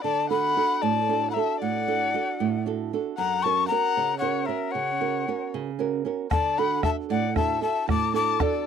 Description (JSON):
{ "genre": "andean folk, Andean ensemble", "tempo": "77 BPM (dotted quarters)", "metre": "6/8", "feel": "straight", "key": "unclear", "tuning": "A4 = 440 Hz", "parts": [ { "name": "breathy quena", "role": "melody", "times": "0.0-8.7 s", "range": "D5 to D6", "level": "-25 LUFS", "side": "left 5 dB", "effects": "none" }, { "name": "warm erhu", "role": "second line", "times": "0.0-8.7 s", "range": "A4 to A5", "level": "-32 LUFS", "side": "left 10 dB", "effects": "none" }, { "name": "flamenco guitar", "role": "accompaniment", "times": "0.0-8.7 s", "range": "F#2 to A#4", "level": "-27 LUFS", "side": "right 9 dB", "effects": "none" }, { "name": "bombo", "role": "percussion", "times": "6.3-8.5 s", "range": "none", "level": "-27 LUFS", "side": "left 2 dB", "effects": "none" } ], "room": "light reverb", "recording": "dry, close 1970s-style studio recording", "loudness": "-23 LUFS", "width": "side -7 dB against mid", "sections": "0.0-8.7 A section", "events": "none", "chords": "0.0 D; 3.2 F#; 6.3 D", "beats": "| 0.05 0.83 | 1.62 2.40 | 3.19 3.97 | 4.75 5.53 | 6.31 7.09 | 7.87 8.65" }